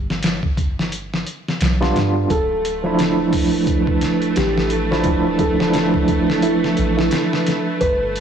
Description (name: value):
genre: trip hop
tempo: 87 BPM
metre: 4/4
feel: swing 59% on 16ths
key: D dorian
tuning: A4 = 440 Hz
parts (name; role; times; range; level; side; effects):
- soft 808-style bass; bass; 0.0-8.2 s; D1 to G2; -25 LUFS; equal; none
- trip hop sampler-style drum kit; drums; 0.1-8.2 s; hi-hat, kick drum, snare drum; -21 LUFS; equal; soft clipping on snare, studio reverb
- barky tine electric piano; accompaniment; 1.8-7.8 s; F3 to F4; -19 LUFS; right 2 dB; overdrive, fast tremolo, tape echo
- felt-muted upright piano; melody; 2.3-8.2 s; E4 to B4; -23 LUFS; equal; tape echo
- bright studio string section; sustained chords; 2.3-8.2 s; A3; -26 LUFS; right 1 dB; none
- bowed-like drone; texture; 3.4-8.2 s; B4; -32 LUFS; right 1 dB; built-in reverb
room: moderate echo chamber reverb, RT60 2.2 s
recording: blown-out, overdriven recording, vinyl crackle, overdrive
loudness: -16 LUFS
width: side -8 dB against mid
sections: 0.0-8.2 A section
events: filter sweep on tine electric piano 0.0-8.2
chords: 0.0 G; 2.3 Dmadd9